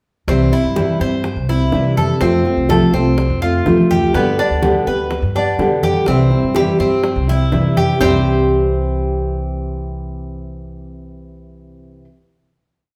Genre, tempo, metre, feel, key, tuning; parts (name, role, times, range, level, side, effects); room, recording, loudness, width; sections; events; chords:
latin, Cuban son and guajira; 124 BPM; 4/4; straight; C major; A4 = 440 Hz
nylon-string guitar; accompaniment; 0.3-12.1 s; B2 to G4; -20 LUFS; equal
Cuban tres; arpeggios; 0.3-12.1 s; B3 to C5; -22 LUFS; equal
upright bass; bass; 0.3-12.0 s; C2 to G3; -22 LUFS; equal
bongos; percussion; 0.3-8.1 s; -29 LUFS; equal
congas; percussion; 0.3-8.1 s; -26 LUFS; equal
wet large studio reverb, RT60 1.3 s; heard from further back in the room; -16 LUFS; mono
0.3-8.0 A section; 8.0-11.9 final chord
0.3 C; 2.2 F; 4.1 G; 6.1 C